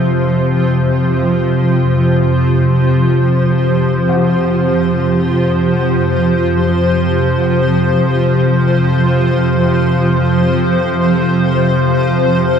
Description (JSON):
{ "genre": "dark ambient drone", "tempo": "free time", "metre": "none", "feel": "none", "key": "unclear", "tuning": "A4 = 440 Hz", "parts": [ { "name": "granular cloud pad", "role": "sustained chords", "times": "0.0-12.6 s", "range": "F3 to C5", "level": "-14 LUFS", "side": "right 1 dB", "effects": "built-in reverb" }, { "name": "organ-like drone", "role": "drone", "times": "0.0-12.6 s", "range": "F2 to C3", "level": "-14 LUFS", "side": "left 1 dB", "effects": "ensemble chorus, built-in reverb" }, { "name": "gamelan-type bronze metallophone", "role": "arpeggios", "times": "4.1-10.7 s", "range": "C3", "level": "-30 LUFS", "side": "left 3 dB", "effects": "none" } ], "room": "wet cathedral reverb, RT60 6.4 s", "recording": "in a vast, echoing space, cassette tape", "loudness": "-11 LUFS", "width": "side -7 dB against mid", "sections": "0.0-12.6 A section", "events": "none", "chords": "0.0 F5" }